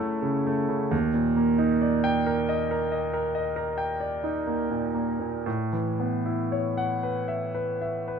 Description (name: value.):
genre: classical, impressionist solo piano.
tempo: 55-71 BPM.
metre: 5/4.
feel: rubato.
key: unclear.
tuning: A4 = 443 Hz.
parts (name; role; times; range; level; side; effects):
clear concert grand piano; solo; 0.0-8.2 s; D#2 to G5; -24 LUFS; right 1 dB; none.
room: light reverb.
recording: dark, warm production.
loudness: -24 LUFS.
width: side -6 dB against mid.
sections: 0.0-8.2 A section.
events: none.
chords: 0.0 F#m7; 0.9 D#maj7; 5.5 A69.